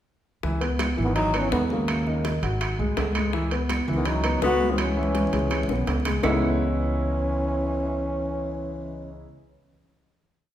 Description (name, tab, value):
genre	Afro-Cuban jazz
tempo	166 BPM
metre	4/4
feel	straight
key	C# minor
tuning	A4 = 439 Hz
part	warm baby grand piano	accompaniment	0.4-9.2 s	C#3 to B4	-29 LUFS	equal	none
part	upright bass	bass	0.4-9.2 s	G#1 to D#2	-28 LUFS	equal	none
part	bongos	percussion	0.4-6.3 s	none	-35 LUFS	left 5 dB	none
part	congas	percussion	0.4-6.3 s	none	-34 LUFS	right 1 dB	none
part	timbales	percussion	0.6-6.3 s	none	-32 LUFS	right 4 dB	none
part	claves	percussion	0.8-6.3 s	none	-37 LUFS	right 4 dB	none
part	growling trombone	melody	1.0-9.3 s	A#3 to F#4	-28 LUFS	right 1 dB	none
part	warm tenor saxophone	second line	1.0-9.2 s	C#3 to B3	-31 LUFS	left 4 dB	none
room	wet recital hall reverb, RT60 1.6 s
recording	recorded in a church or concert hall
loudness	-22 LUFS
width	side -11 dB against mid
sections	0.4-6.2 A section; 6.2-9.1 final chord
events	drum fill 4.8-6.2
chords	0.4 C#m11; 1.9 D#m7; 2.6 G#7; 3.3 C#m11; 6.2 C#m9